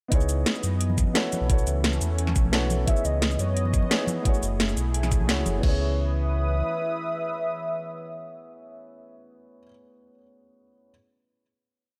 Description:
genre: liquid drum and bass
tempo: 174 BPM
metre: 4/4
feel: straight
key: C# minor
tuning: A4 = 440 Hz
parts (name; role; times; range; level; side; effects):
- dark grand piano; accompaniment; 0.1-10.9 s; A3 to C#5; -35 LUFS; equal; digital delay
- lush unison pad; sustained chords; 0.4-9.2 s; E3 to D#6; -36 LUFS; equal; chorus
- sub bass with octave; bass; 0.1-6.6 s; F#1 to F#2; -28 LUFS; equal; none
- drum and bass drum kit; drums; 0.1-5.7 s; cabasa, crash cymbal, hi-hat, snare drum; -30 LUFS; equal; none
- electronic kick drum; drums; 0.1-5.7 s; none; -25 LUFS; equal; none
- congas; percussion; 0.9-5.5 s; none; -36 LUFS; equal; none
- warm velvety synth lead; melody; 2.9-9.2 s; C#5 to E5; -34 LUFS; equal; chorus, tape echo
room: light reverb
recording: none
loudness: -25 LUFS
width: mono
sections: 0.1-5.6 drop; 5.6-8.4 final chord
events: drop 0.1-5.6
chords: 0.1 C#m7; 1.3 B9sus4; 2.9 C#m7; 4.3 F#m9; 5.6 C#m7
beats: | 0.12 0.46 0.81 1.15 | 1.50 1.84 2.19 2.53 | 2.88 3.22 3.56 3.91 | 4.25 4.60 4.94 5.29 | 5.63 5.98 6.32 6.67 | 7.01 7.36 7.70 8.05

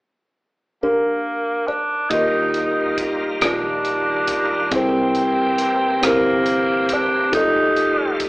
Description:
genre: slow gospel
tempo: 46 BPM (dotted quarters)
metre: 6/8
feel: straight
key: Eb major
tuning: A4 = 440 Hz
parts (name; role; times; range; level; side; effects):
- kalimba; melody; 0.8-8.3 s; D4 to Eb5; -24 LUFS; equal; none
- raspy tenor saxophone; melody; 0.8-8.2 s; Bb3 to Eb4; -20 LUFS; equal; none
- mellow tine electric piano; accompaniment; 2.1-8.3 s; C3 to Eb5; -21 LUFS; equal; slow stereo tremolo
- bright tonewheel organ; sustained chords; 2.1-8.3 s; Eb3 to G4; -27 LUFS; equal; slow rotary speaker, chorus vibrato
- fingered electric bass; bass; 2.1-8.3 s; F1 to Eb2; -34 LUFS; equal; none
- crisp fusion drum kit; drums; 2.1-8.3 s; hi-hat, kick drum, rim click; -25 LUFS; equal; none
room: wet large studio reverb, RT60 1.1 s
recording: band playing live in one room, AM radio sound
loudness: -17 LUFS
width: side -25 dB against mid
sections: 0.0-2.1 A section; 2.1-8.3 B section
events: none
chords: 0.0 Bb6; 2.1 Ebmaj9; 4.7 C7; 7.3 F9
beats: 0.80 | 2.11 3.42 | 4.72 6.02 | 7.33

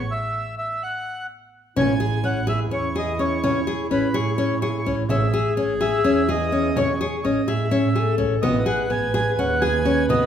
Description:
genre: contemporary instrumental, chamber music in an uneven meter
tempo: 252 BPM (eighths)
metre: 7/8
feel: straight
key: A lydian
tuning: A4 = 440 Hz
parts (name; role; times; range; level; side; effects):
- mellow accordion; melody; 0.0-10.3 s; B4 to G#5; -26 LUFS; right 1 dB; none
- dark double bass; bass; 0.0-10.3 s; A1 to A2; -26 LUFS; right 3 dB; none
- dark clarinet; second line; 1.8-10.3 s; E4 to B4; -26 LUFS; left 1 dB; none
- nylon-string guitar; arpeggios; 1.8-10.3 s; B3 to G#4; -23 LUFS; left 2 dB; none
- frame drum; percussion; 1.8-10.3 s; none; -31 LUFS; right 1 dB; none
room: moderate scoring stage reverb, RT60 1.6 s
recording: minimal, uncompressed stereo recording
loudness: -19 LUFS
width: side -9 dB against mid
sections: 0.0-1.8 A section; 1.8-10.3 B section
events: stop 0.1-1.8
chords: 0.1 N.C.; 1.8 Amaj7; 8.4 G#m/A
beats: | 0.10 0.34 0.58 0.82 1.05 1.29 1.53 | 1.77 2.01 2.25 2.48 2.72 2.96 3.20 | 3.44 3.67 3.91 4.15 4.39 4.62 4.86 | 5.10 5.34 5.58 5.82 6.05 6.29 6.53 | 6.77 7.01 7.24 7.48 7.72 7.96 8.20 | 8.43 8.67 8.91 9.15 9.39 9.62 9.86 | 10.10

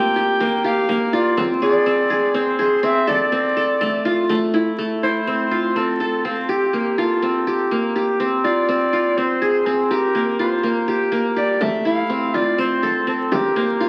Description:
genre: contemporary instrumental, chamber music in an uneven meter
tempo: 246 BPM (eighths)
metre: 7/8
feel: straight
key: unclear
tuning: A4 = 440 Hz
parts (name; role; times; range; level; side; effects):
- breathy soprano saxophone; melody; 0.0-13.9 s; F4 to G5; -25 LUFS; equal; none
- qanun; arpeggios; 0.0-13.9 s; A3 to A4; -20 LUFS; equal; none
- frame drum; percussion; 0.4-4.5, 11.6-13.5 s; none; -34 LUFS; equal; none
room: wet recital hall reverb, RT60 1.4 s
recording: very old 78 rpm record, vinyl crackle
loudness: -19 LUFS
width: mono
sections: 0.0-4.8 A section; 4.8-13.9 B section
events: none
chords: 0.0 Bb5; 1.4 C(#5, no3); 3.1 Fmaj7; 6.5 C7sus4; 8.2 Fm6; 9.9 Bb5; 11.6 Fmaj7; 13.3 C7sus4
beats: 0.16 0.40 0.64 0.89 1.13 | 1.37 1.62 1.86 2.10 2.35 2.59 2.83 | 3.08 3.32 3.56 3.81 4.05 4.30 4.54 | 4.78 5.03 5.27 5.51 5.76 6.00 6.25 | 6.49 6.74 6.98 7.22 7.47 7.71 7.96 | 8.20 8.44 8.69 8.93 9.18 9.42 9.66 | 9.91 10.15 10.39 10.64 10.88 11.12 11.37 | 11.61 11.86 12.10 12.34 12.59 12.83 13.07 | 13.32 13.56 13.80

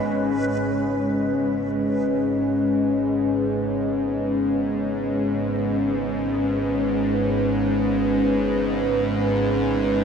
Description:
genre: dark ambient drone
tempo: free time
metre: none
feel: none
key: G# minor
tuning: A4 = 441 Hz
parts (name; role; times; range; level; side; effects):
- deep dark ambient pad; sustained chords; 0.0-10.0 s; G#3 to B4; -21 LUFS; equal; chorus, built-in reverb
- bowed-like drone; drone; 0.0-10.0 s; G#1 to G#2; -28 LUFS; equal; built-in reverb
room: wet cathedral reverb, RT60 6.5 s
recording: none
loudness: -20 LUFS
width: side -7 dB against mid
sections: 0.0-10.0 A section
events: fade-in on synth drone 0.0-10.0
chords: 0.0 G#m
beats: free time

